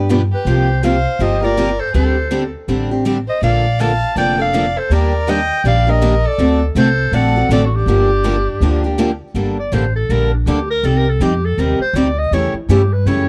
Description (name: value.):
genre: acoustic string swing (jazz manouche).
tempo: 162 BPM.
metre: 4/4.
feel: swing 61% on 8ths.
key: G minor.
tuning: A4 = 439 Hz.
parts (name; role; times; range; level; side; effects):
picked steel-string acoustic guitar; accompaniment; 0.0-13.3 s; B2 to B4; -21 LUFS; equal; none.
upright bass; bass; 0.0-13.3 s; F1 to G2; -19 LUFS; equal; none.
picked steel-string acoustic guitar; accompaniment; 0.1-13.3 s; B2 to C#5; -25 LUFS; equal; none.
bright clarinet; melody; 0.3-13.3 s; D4 to A5; -21 LUFS; equal; none.
warm violin; second line; 0.3-9.0 s; D4 to F5; -27 LUFS; equal; none.
room: little or no reverb.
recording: dry, close 1970s-style studio recording.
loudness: -16 LUFS.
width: mono.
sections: 0.0-9.4 A section; 9.4-13.3 B section.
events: clarinet solo 9.4-13.3.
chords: 0.5 C7sus4; 1.9 D7sus4; 3.4 Bbmaj7; 4.9 Ebmaj7; 6.4 D7; 7.9 Gm7; 9.4 Gmadd9; 10.8 Cm; 12.3 A7.